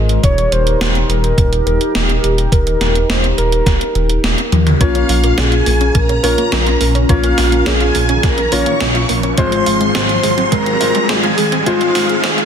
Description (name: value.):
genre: synthwave.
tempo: 105 BPM.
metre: 4/4.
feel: straight.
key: Bb dorian.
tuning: A4 = 445 Hz.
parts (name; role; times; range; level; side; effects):
chorused pulse-width pad; sustained chords; 0.0-12.4 s; Ab3 to Eb5; -22 LUFS; right 1 dB; sidechain pumping.
dark detuned saw bass; bass; 0.0-12.4 s; Eb1 to Eb2; -17 LUFS; equal; none.
gated 80s digital drum machine; drums; 0.1-12.4 s; hi-hat, snare drum, toms; -19 LUFS; equal; gated reverb, gated reverb snare, high-pass filter on hats, high-pass filter on snare, high-pass filter on toms, high-pass filter on room.
warm velvety synth lead; melody; 0.2-12.4 s; F4 to Db5; -19 LUFS; left 1 dB; chorus, cassette tape, ping-pong delay.
electronic kick drum; drums; 0.2-11.8 s; none; -14 LUFS; equal; none.
string machine, violins; second line; 4.8-12.4 s; F5 to Db6; -21 LUFS; equal; ensemble chorus, digital delay.
analog pluck; arpeggios; 4.8-12.4 s; Ab3 to F4; -22 LUFS; right 2 dB; chorus, digital delay.
warm concert grand piano; stabs; 4.8-12.4 s; Ab3 to Db5; -21 LUFS; left 3 dB; digital delay.
riser; sound effects; 7.3-12.4 s; none; -23 LUFS; right 2 dB; none.
room: light reverb.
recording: dense, heavily limited modern master, high-pass filter.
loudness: -11 LUFS.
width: side -8 dB against mid.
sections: 0.0-4.8 A section; 4.8-12.4 B section.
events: drum fill 4.5; filter sweep 4.8-12.4; riser 7.3-12.4.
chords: 0.2 Eb; 4.8 Bbm; 9.4 Fm/Ab.